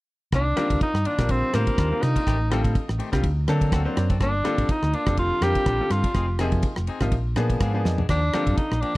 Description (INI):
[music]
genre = electric jazz fusion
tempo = 124 BPM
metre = 4/4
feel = swing 55% on 16ths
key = C dorian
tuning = A4 = 440 Hz
[part]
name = clean electric guitar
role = stabs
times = 0.3-9.0 s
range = Eb3 to A4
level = -34 LUFS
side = left 4 dB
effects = lush chorus
[part]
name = hollow-body short-scale fingered electric bass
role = bass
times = 0.3-8.9 s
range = F1 to D3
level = -24 LUFS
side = equal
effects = none
[part]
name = damped 70s drum kit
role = drums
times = 0.3-8.9 s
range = crash cymbal, kick drum, ride cymbal, rim click, snare drum, toms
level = -25 LUFS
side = equal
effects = none
[part]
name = warm tenor saxophone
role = melody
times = 0.4-9.0 s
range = Bb3 to G4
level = -26 LUFS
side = equal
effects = none
[part]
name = bright grand piano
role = accompaniment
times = 0.6-8.6 s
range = C3 to A5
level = -28 LUFS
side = left 1 dB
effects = none
[sound]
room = little or no reverb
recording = dry, close 1970s-style studio recording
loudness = -20 LUFS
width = side -20 dB against mid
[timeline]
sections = 0.3-9.0 A section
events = grand piano fill 3.2-4.2, 7.1-8.1; drum fill 7.8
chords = 0.3 Cm11; 2.3 Am7b5; 3.2 D7b13; 4.2 Gm9; 6.2 Fm7; 7.1 Bb7b9; 8.1 Ebmaj9